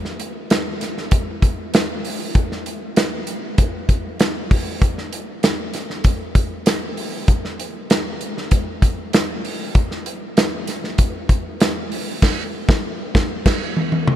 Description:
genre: pop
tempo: 97 BPM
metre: 4/4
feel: straight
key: none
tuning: none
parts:
  - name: modern studio drum kit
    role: drums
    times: 0.0-14.2 s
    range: crash cymbal, hi-hat, kick drum, snare drum, toms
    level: -18 LUFS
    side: equal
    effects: none
room: moderate huge ambient reverb, RT60 7.9 s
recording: none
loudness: -18 LUFS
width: side -12 dB against mid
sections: 0.0-14.2 A section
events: band accent 12.2-14.2; drum fill 13.5-14.2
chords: none

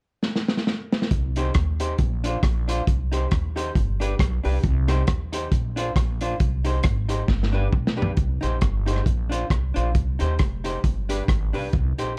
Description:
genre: ska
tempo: 136 BPM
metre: 4/4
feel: swing 57% on 8ths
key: C minor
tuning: A4 = 439 Hz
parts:
  - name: vintage drum kit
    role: drums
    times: 0.2-12.1 s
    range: hi-hat, kick drum, rim click, snare drum, toms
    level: -26 LUFS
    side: equal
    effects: none
  - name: upright bass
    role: bass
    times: 1.1-12.1 s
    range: F1 to Eb2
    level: -27 LUFS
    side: equal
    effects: none
  - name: vintage hollow-body jazz guitar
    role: accompaniment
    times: 1.4-12.1 s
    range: D4 to C5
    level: -32 LUFS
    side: equal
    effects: none
room: small room ambience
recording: dark, warm production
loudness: -23 LUFS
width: mono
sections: 0.0-1.1 A section; 1.1-8.2 B section; 8.2-12.2 C section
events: drum fill 0.2-1.1, 7.3-8.2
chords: 0.0 N.C.; 1.1 Cm; 2.0 Bbadd9; 2.9 Cm; 3.8 G; 4.6 Cm; 5.5 Bbadd9; 6.4 Cm; 7.3 G; 8.2 Cm; 9.1 Bbadd9; 10.0 Cm; 10.8 G

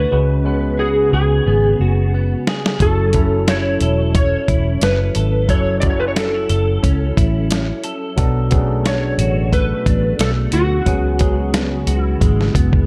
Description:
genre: indie pop, bedroom pop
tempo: 89 BPM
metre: 4/4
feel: swing 55% on 16ths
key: F# minor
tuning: A4 = 441 Hz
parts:
  - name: electric slide guitar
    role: melody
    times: 0.0-12.8 s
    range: F#4 to D5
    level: -23 LUFS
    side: equal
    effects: ensemble chorus, tape echo
  - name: barky tine electric piano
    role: accompaniment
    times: 0.0-12.9 s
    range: F#3 to B4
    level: -27 LUFS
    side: equal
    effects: overdrive, cassette tape
  - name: clean electric guitar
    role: accompaniment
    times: 0.0-12.9 s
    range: B2 to A4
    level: -26 LUFS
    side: equal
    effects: ensemble chorus, warbly pitch drift
  - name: vintage muted fingered electric bass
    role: bass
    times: 0.0-12.9 s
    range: E1 to D2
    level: -21 LUFS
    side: equal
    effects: none
  - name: dusty soul sampler-style drum kit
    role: drums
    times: 2.5-12.9 s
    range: hi-hat, kick drum, snare drum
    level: -20 LUFS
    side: equal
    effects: none
room: light reverb, digital ambience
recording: none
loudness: -17 LUFS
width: mono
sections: 0.0-12.9 A section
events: drum fill 1.5-2.8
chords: 0.1 C#7sus4; 2.8 F#m7; 8.2 Bm7; 10.9 C#7sus4

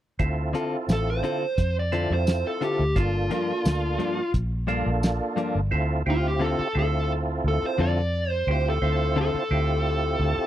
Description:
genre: straight-eighth soul blues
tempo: 87 BPM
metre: 4/4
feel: straight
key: D minor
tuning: A4 = 440 Hz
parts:
  - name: percussive tonewheel organ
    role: accompaniment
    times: 0.2-10.5 s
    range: Bb3 to C5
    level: -29 LUFS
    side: right 2 dB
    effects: overdrive, chorus vibrato, stopped rotary speaker
  - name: vintage muted fingered electric bass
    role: bass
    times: 0.2-10.4 s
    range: G1 to F2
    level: -25 LUFS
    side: equal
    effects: none
  - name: cloth-damped thuddy drum kit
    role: drums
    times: 0.2-5.5 s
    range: hi-hat, kick drum, snare drum, tambourine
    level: -24 LUFS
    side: equal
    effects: none
  - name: direct-recorded clean electric guitar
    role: stabs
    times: 0.5-9.4 s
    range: G2 to A4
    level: -28 LUFS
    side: left 5 dB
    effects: none
  - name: dark smooth lead guitar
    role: melody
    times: 0.9-10.5 s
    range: F4 to D5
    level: -27 LUFS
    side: equal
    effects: overdrive
room: studio ambience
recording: dry, close 1970s-style studio recording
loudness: -22 LUFS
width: side -12 dB against mid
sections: 0.2-5.7 A section; 5.7-10.5 B section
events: none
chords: 0.2 Dm7; 3.0 Gm7; 5.7 Dm7

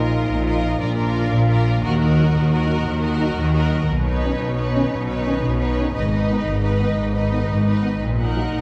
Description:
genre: cinematic, heroic adventure film score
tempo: 117 BPM (dotted quarters)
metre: 12/8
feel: straight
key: Eb minor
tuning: A4 = 438 Hz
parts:
  - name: warm symphonic violin section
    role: melody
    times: 0.0-8.6 s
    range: C#5 to Gb5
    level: -34 LUFS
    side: equal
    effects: none
  - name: rich symphonic violin section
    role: second line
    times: 0.0-8.6 s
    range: Bb4 to B4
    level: -32 LUFS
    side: equal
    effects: none
  - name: rich symphonic viola section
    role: accompaniment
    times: 0.0-8.6 s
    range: D#4 to Gb4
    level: -31 LUFS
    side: equal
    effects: none
  - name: mellow French horn section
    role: sustained chords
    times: 0.0-8.4 s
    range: D#3 to Eb4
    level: -30 LUFS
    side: equal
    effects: none
  - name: clear symphonic double bass section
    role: bass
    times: 0.0-8.6 s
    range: Ab1 to Eb2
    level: -24 LUFS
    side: equal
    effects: none
  - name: rich symphonic cello section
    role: bass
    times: 0.0-8.6 s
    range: Ab2 to Eb3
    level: -25 LUFS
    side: equal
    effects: none
room: wet scoring stage reverb, RT60 1.6 s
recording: heard from further back in the room, faint mains hum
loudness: -20 LUFS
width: mono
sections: 0.0-8.6 A section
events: build-up 0.0-8.6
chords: 0.0 Bbsus4; 0.8 Bb; 1.8 Ebm; 3.9 Badd9; 5.9 Abm; 8.0 Ebm/Bb

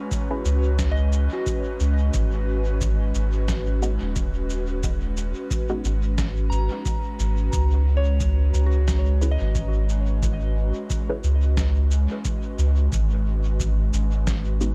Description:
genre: ambient dub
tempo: 89 BPM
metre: 4/4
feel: swing 57% on 16ths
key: unclear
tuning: A4 = 443 Hz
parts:
  - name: airy breathy pad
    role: sustained chords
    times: 0.0-14.7 s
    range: G#3 to B4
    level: -34 LUFS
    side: equal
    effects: chorus
  - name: soft synth bell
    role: arpeggios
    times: 0.0-12.9 s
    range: F#4 to A#5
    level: -38 LUFS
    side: equal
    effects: chorus, dub echo
  - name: electronic cabasa and snare drum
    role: drums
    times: 0.1-14.7 s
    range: none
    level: -36 LUFS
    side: equal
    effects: studio reverb, dub echo
  - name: electronic kick drum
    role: drums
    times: 0.1-14.4 s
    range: none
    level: -31 LUFS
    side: equal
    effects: studio reverb
  - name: filtered dub chord stab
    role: stabs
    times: 0.3-14.7 s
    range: G#3 to B4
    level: -35 LUFS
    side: equal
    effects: phaser, cassette tape, dub echo
  - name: soft dub sub bass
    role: bass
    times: 0.5-14.7 s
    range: D#1 to C#2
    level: -23 LUFS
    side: equal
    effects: tube saturation
room: little or no reverb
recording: echo-heavy mix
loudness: -23 LUFS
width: mono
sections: 0.0-14.7 A section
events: none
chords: 0.0 C#7(no3); 2.1 G#m7; 7.5 C#m7; 12.9 G#m7

